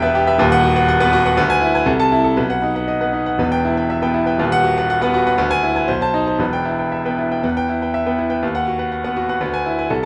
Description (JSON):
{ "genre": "classical, virtuoso piano study", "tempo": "120 BPM", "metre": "2/4", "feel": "rubato", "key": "E minor", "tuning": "A4 = 441 Hz", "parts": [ { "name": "clear grand piano", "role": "solo", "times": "0.0-10.1 s", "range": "D#1 to A5", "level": "-18 LUFS", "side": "equal", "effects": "none" } ], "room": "moderate large studio reverb, RT60 1.2 s", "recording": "nothing above 11.0 kHz", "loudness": "-18 LUFS", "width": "mono", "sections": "0.0-7.4 A section; 7.4-10.1 B section", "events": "none", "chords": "0.4 B/D#; 1.4 E7/D; 1.9 Am/C; 2.4 B; 3.4 Em; 4.4 B/D#; 5.4 E7/D; 5.9 B7b9; 6.4 Em; 8.4 B/D#; 9.4 E7/D" }